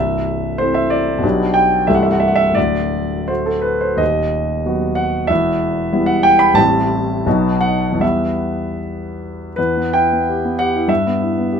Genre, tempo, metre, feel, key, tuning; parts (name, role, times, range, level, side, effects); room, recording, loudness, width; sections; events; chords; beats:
classical, romantic character piece for solo piano; 75-98 BPM; 2/4; rubato; E minor from 4.0 s; A4 = 441 Hz
warm concert grand piano; solo; 0.0-11.6 s; C1 to B5; -14 LUFS; equal
light reverb; -14 LUFS; side -7 dB against mid
0.0-9.6 A section; 9.6-11.6 B section
0.0 Am/C; 1.2 G/B; 1.9 Am7/C; 2.6 D; 4.0 B/D#; 5.3 Em; 6.6 Am7; 7.3 B7; 8.0 Em; 10.9 Em/G
0.61 | 1.24 1.88 | 2.56 3.29 | 4.00 4.67 | 5.30 5.93 | 6.57 7.26 | 8.02 8.79 | 9.57 10.27 | 10.89 11.51